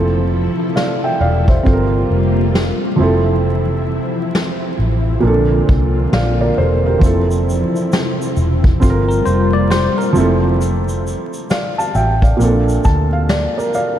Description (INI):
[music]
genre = lo-fi hip hop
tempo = 67 BPM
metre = 4/4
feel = swing 62% on 16ths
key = F major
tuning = A4 = 440 Hz
[part]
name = felt-muted upright piano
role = accompaniment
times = 0.0-14.0 s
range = Bb2 to A5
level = -18 LUFS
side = right 2 dB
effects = none
[part]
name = string machine, cellos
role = sustained chords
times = 0.0-10.6 s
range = C3 to A4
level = -20 LUFS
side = left 1 dB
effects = ensemble chorus
[part]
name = vintage muted fingered electric bass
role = bass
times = 0.0-13.5 s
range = E1 to D2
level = -17 LUFS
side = equal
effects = none
[part]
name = vintage brush drum kit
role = drums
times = 0.8-14.0 s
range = hi-hat, kick drum, shaker, snare drum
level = -19 LUFS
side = equal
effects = none
[part]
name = bell-like tine electric piano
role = second line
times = 9.1-10.4 s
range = Bb4 to D5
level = -23 LUFS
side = left 3 dB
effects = medium stereo tremolo, analog delay
[sound]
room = moderate cathedral reverb, RT60 5.0 s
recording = dreamy mix soaked in reverb, vinyl crackle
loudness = -13 LUFS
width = side -11 dB against mid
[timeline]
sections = 0.0-14.0 A section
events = break 0.0-7.0; felt piano fill 12.4-14.0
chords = 0.0 Fmaj7; 1.6 C7sus4; 3.0 Fmaj7; 5.2 Bbmaj7; 7.0 Fmaj7; 8.8 C7sus4; 10.2 Fmaj7; 12.4 Bbmaj7